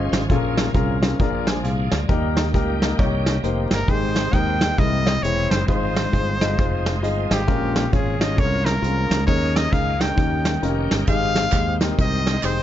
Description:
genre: uptempo gospel.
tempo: 134 BPM.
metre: 4/4.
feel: swing 62% on 8ths.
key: Ab major.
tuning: A4 = 440 Hz.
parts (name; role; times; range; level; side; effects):
warm concert grand piano; accompaniment; 0.0-12.6 s; Ab2 to Ab5; -25 LUFS; left 4 dB; none.
bright tonewheel organ; sustained chords; 0.0-12.6 s; Eb3 to G5; -31 LUFS; right 2 dB; slow rotary speaker, chorus vibrato.
modern bright fingered electric bass; bass; 0.0-12.6 s; E1 to Eb2; -24 LUFS; equal; none.
vintage brush drum kit; drums; 0.1-12.6 s; hi-hat, kick drum, snare drum; -22 LUFS; right 1 dB; none.
brilliant trumpet; melody; 3.7-12.6 s; G4 to G5; -25 LUFS; left 1 dB; none.
tambourine and handclaps; percussion; 11.1-12.6 s; none; -33 LUFS; right 7 dB; none.
room: light reverb.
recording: dark, warm production, nothing above 7.6 kHz.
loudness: -18 LUFS.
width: side -11 dB against mid.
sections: 0.0-12.6 A section.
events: grand piano fill 0.0.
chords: 0.3 Bbm7; 1.2 Bb7; 2.1 Eb; 3.9 Abmaj7; 4.8 C7alt; 5.7 Fm7; 7.5 Bbm7; 9.3 Eb7sus4; 10.2 Eb7; 11.1 Abmaj7.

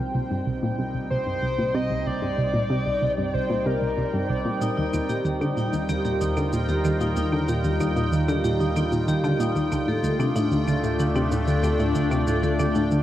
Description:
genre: ambient, sequencer-driven space music.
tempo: 94 BPM.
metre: 4/4.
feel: straight.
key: Eb lydian.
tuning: A4 = 437 Hz.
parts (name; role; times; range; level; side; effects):
sweeping resonant pad; sustained chords; 0.0-13.0 s; G3 to D5; -28 LUFS; equal; chorus, shimmer reverb.
analog pluck; riff; 0.0-13.0 s; C2 to D3; -25 LUFS; equal; chorus, tape echo.
analog drone; bass; 0.4-13.0 s; C2 to Eb2; -31 LUFS; equal; chorus.
bubbling stepped-filter texture; texture; 0.0-13.0 s; G5; -36 LUFS; right 2 dB; chorus, built-in reverb, shimmer reverb.
pulse-width lead; melody; 1.1-4.6 s; Bb4 to Eb5; -29 LUFS; left 1 dB; chorus, shimmer reverb, tape echo.
vibraphone with hard mallets; arpeggios; 4.6-12.9 s; D4 to A4; -28 LUFS; moving between left 4 dB and right 2 dB; auto-pan, shimmer reverb, tape echo.
cabasa and claves; percussion; 4.6-13.0 s; none; -42 LUFS; equal; tape echo.
room: wet huge ambient reverb, RT60 8.9 s.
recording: worn, warbling old tape, cassette tape, warbly pitch drift.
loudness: -21 LUFS.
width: side -12 dB against mid.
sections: 0.0-13.0 A section.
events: fade-in on analog synth pad 0.0-13.0; fade-in on synth drone 0.0-13.0.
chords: 0.0 Cm; 4.6 Ebadd9; 9.7 Dm.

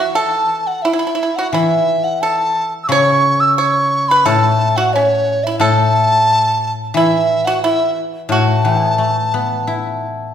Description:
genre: chinese traditional, Chinese chamber ensemble.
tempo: 88 BPM.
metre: 4/4.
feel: rubato.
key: A gong mode.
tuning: A4 = 441 Hz.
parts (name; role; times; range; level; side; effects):
mellow hollow large dizi; melody; 0.0-10.3 s; C#5 to E6; -16 LUFS; right 1 dB; none.
pipa; second line; 0.0-10.3 s; C#4 to C#5; -19 LUFS; right 2 dB; none.
guzheng; accompaniment; 0.0-10.3 s; A2 to E4; -18 LUFS; left 4 dB; none.
room: wet recital hall reverb, RT60 1.4 s.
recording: recorded in a church or concert hall.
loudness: -13 LUFS.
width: side -9 dB against mid.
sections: 0.0-10.3 A section.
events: none.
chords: none.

